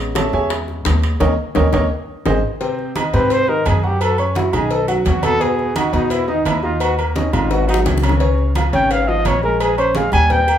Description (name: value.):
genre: Afro-Cuban jazz.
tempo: 171 BPM.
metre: 4/4.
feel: straight.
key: unclear.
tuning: A4 = 440 Hz.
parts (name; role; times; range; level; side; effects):
warm upright piano; accompaniment; 0.0-10.6 s; B2 to Db6; -20 LUFS; right 1 dB; none.
upright bass; bass; 0.0-10.6 s; Ab1 to Ab2; -19 LUFS; equal; none.
bongos and cowbell; percussion; 0.2-10.5 s; none; -24 LUFS; left 6 dB; none.
congas; percussion; 0.2-10.6 s; none; -27 LUFS; right 1 dB; none.
timbales and agogo bells; percussion; 0.2-10.6 s; none; -25 LUFS; right 4 dB; none.
dark trumpet; melody; 3.1-10.6 s; Bb3 to Ab5; -19 LUFS; equal; none.
room: moderate large studio reverb, RT60 1.2 s.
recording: band playing live in one room.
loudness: -15 LUFS.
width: side -10 dB against mid.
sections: 0.0-2.6 A section; 2.6-10.6 A section.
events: upright piano solo 0.0-2.6; drum fill 1.2-2.6, 7.5-8.2; band accent 1.2-2.6; trumpet solo 2.6-10.6.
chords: 0.0 Amaj9; 1.2 Eb5; 1.9 Ab; 4.0 Gb5; 4.7 B; 5.4 Emaj7; 6.8 Eb5; 7.5 Ab5; 8.2 Db6; 9.6 Bbm7.